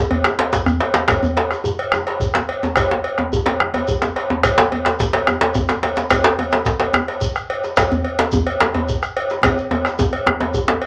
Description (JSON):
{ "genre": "west african traditional, West African drum ensemble", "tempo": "144 BPM (dotted quarters)", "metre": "12/8", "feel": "straight", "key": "none", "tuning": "none", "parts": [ { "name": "cowbell", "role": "percussion", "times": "0.1-10.9 s", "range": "none", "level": "-25 LUFS", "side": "equal", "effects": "none" }, { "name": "djembe", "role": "percussion", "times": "0.1-10.8 s", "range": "none", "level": "-21 LUFS", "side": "equal", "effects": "none" }, { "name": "bombo", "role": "percussion", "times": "0.2-10.8 s", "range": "none", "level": "-23 LUFS", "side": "equal", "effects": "none" }, { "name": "djembe", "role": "percussion", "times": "0.2-10.8 s", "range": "none", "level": "-27 LUFS", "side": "equal", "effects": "none" }, { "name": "shekere", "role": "percussion", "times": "0.3-10.7 s", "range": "none", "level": "-32 LUFS", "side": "equal", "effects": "none" } ], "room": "wet small room reverb, RT60 0.5 s", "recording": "none", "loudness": "-18 LUFS", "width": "mono", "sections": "0.0-10.9 A section", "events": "drum fill 4.0-4.4, 9.4-10.9", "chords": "none", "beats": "0.25 0.67 | 1.09 1.51 1.93 2.35 | 2.77 3.19 3.60 4.02 | 4.44 4.86 5.28 5.69 | 6.11 6.53 6.94 7.36 | 7.78 8.19 8.61 9.02 | 9.44 9.85 10.26 10.68" }